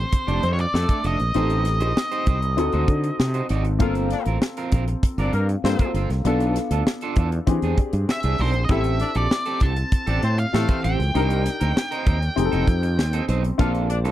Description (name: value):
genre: polished 1980s jazz-funk pop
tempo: 98 BPM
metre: 4/4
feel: straight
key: unclear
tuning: A4 = 440 Hz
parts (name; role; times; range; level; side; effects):
- octave-fuzz lead guitar; melody; 0.0-3.5, 8.1-13.2 s; C5 to A5; -27 LUFS; equal; distortion, slapback echo
- warm baby grand piano; accompaniment; 0.0-14.1 s; D3 to A5; -28 LUFS; left 4 dB; analog chorus
- fretless electric bass; bass; 0.0-14.1 s; F1 to E3; -22 LUFS; equal; none
- electric guitar at the edge of break-up; riff; 0.1-14.1 s; A3 to D5; -30 LUFS; right 6 dB; lush chorus
- crisp fusion drum kit; drums; 0.1-14.1 s; hi-hat, kick drum, snare drum; -22 LUFS; equal; none
- warm horn section; second line; 0.3-14.0 s; A3 to F5; -29 LUFS; left 3 dB; none
room: little or no reverb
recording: dry, close 1970s-style studio recording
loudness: -19 LUFS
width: side -13 dB against mid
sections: 0.0-14.1 A section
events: none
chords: 0.0 F69; 1.4 Am7b5; 2.6 D7b9; 3.8 Gm11; 6.3 Bm7b5; 7.5 E7alt; 8.7 Am7; 11.1 Cm7; 12.4 F7; 13.6 Bbmaj7